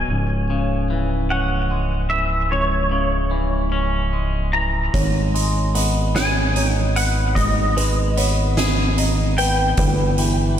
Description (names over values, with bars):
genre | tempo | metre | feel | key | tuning
post-rock | 50 BPM (dotted quarters) | 6/8 | straight | unclear | A4 = 440 Hz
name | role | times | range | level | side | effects
twangy electric guitar | melody | 0.0-10.6 s | C#5 to A#5 | -24 LUFS | equal | ensemble chorus, slapback echo, digital delay
twangy electric guitar | arpeggios | 0.0-10.6 s | C#2 to G#4 | -25 LUFS | left 2 dB | digital delay
growling FM bass | bass | 0.0-10.6 s | C#1 to G#1 | -21 LUFS | equal | none
felt-muted upright piano | arpeggios | 4.9-10.6 s | B4 to D#5 | -29 LUFS | right 4 dB | slapback echo, digital delay
oversized low-tuned drum kit | drums | 4.9-10.4 s | hi-hat, kick drum, snare drum | -22 LUFS | right 1 dB | none
room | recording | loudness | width
light reverb | none | -17 LUFS | side -10 dB against mid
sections
0.0-10.6 A section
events
none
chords
0.1 C#m; 4.9 G#m; 9.8 Em/G